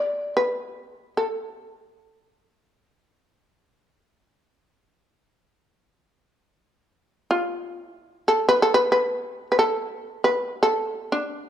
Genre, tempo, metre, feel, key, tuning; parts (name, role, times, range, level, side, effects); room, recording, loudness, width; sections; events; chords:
japanese traditional, Japanese chamber music; free time; A4 = 440 Hz
shamisen; solo; 0.0-11.5 s; D4 to D5; -21 LUFS; equal
moderate recital hall reverb, RT60 1.7 s; dark, warm production; -21 LUFS; side -10 dB against mid
0.0-11.5 A section
slowing down 8.1-11.5